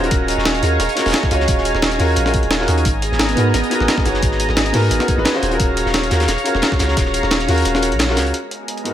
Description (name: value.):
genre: liquid drum and bass.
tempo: 175 BPM.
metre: 4/4.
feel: swing 54% on 16ths.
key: G# minor.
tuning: A4 = 440 Hz.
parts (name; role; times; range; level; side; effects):
warm grand piano; accompaniment; 0.0-8.9 s; G#2 to C#5; -21 LUFS; equal; dub echo.
lush unison pad; sustained chords; 0.0-8.9 s; G#3 to A#5; -22 LUFS; equal; chorus, sidechain pumping.
vibraphone with medium hard mallets; arpeggios; 0.0-8.4 s; D#4 to D#5; -26 LUFS; right 5 dB; digital delay.
long sustained 808-style bass; bass; 0.0-8.3 s; D#1 to G#2; -20 LUFS; equal; tube saturation.
cloth-damped thuddy drum kit; drums; 0.0-8.3 s; hi-hat, snare drum; -26 LUFS; left 2 dB; high-pass filter on hats, high-pass filter on snare, high-pass filter on room.
breakbeat sampler-style drum kit; drums; 0.1-8.9 s; hi-hat, snare drum; -21 LUFS; equal; none.
electronic kick drum; drums; 0.1-7.0 s; none; -20 LUFS; equal; none.
room: light reverb, studio reverb.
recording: none.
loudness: -14 LUFS.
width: side -11 dB against mid.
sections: 0.0-8.3 A section.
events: drop 0.0-8.3; kick drops out 7.7-8.3.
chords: 0.0 D#m9; 2.9 G#m9; 5.4 D#m9; 8.3 G#m9.